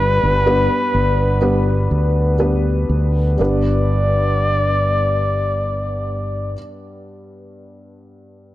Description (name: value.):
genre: pop.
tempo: 59-64 BPM.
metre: 4/4.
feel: straight.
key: G major.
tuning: A4 = 441 Hz.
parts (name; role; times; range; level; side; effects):
clear flugelhorn; melody; 0.0-6.5 s; B4 to D5; -20 LUFS; left 1 dB; none.
felt-muted upright piano; accompaniment; 0.0-8.5 s; G2 to B4; -22 LUFS; equal; none.
fretless electric bass; bass; 0.0-6.5 s; G1 to D2; -18 LUFS; equal; none.
room: light reverb, studio reverb.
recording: dark, warm production.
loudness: -15 LUFS.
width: side -15 dB against mid.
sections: 0.0-3.4 A section; 3.4-7.4 B section.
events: slowing down 0.0-3.4.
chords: 0.0 G.